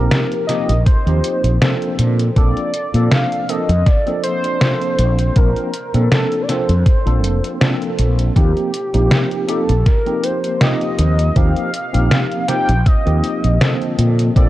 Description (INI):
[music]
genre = vaporwave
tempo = 80 BPM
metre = 4/4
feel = swing 54% on 16ths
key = Eb lydian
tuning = A4 = 441 Hz
[part]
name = warm velvety synth lead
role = melody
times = 0.0-14.5 s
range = G4 to G5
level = -22 LUFS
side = equal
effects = chorus, tape echo
[part]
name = tine electric piano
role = accompaniment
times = 0.0-14.5 s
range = D3 to Bb4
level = -21 LUFS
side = equal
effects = medium stereo tremolo, analog chorus, analog delay
[part]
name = mellow fretless electric bass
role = bass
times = 0.0-14.5 s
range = F1 to Bb2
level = -15 LUFS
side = equal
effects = tube saturation, analog chorus
[part]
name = detuned 8-bit digital drum machine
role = drums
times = 0.1-14.5 s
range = hi-hat, snare drum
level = -19 LUFS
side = equal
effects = none
[part]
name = electronic kick drum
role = drums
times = 0.9-14.5 s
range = none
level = -13 LUFS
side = equal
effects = none
[sound]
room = light reverb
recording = cassette tape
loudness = -14 LUFS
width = side -15 dB against mid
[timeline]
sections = 0.0-14.5 A section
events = none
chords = 0.0 Eb69; 2.0 Bbmaj9; 8.4 Eb69; 14.0 Bbmaj9